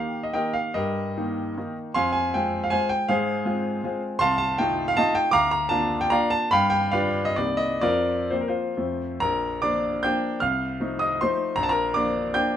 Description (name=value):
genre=classical, romantic triple-time dance for piano with dotted rhythms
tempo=121-169 BPM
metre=3/4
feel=rubato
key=Bb major from 4.2 s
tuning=A4 = 443 Hz
part: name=warm grand piano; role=solo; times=0.0-12.6 s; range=Bb1 to G6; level=-22 LUFS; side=equal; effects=none
room=moderate large studio reverb, RT60 0.9 s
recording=minimal, uncompressed stereo recording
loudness=-22 LUFS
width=side -10 dB against mid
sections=0.0-9.2 A section; 9.2-12.6 B section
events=none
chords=0.0 Eb; 0.7 Eb/G; 1.9 Fm; 3.1 Fm/Ab; 4.2 F7/C; 5.3 Bb/D; 6.5 G7; 7.4 Cm7; 7.8 Fsus4; 8.8 F; 9.2 Bb; 10.4 F7/C; 11.6 Bb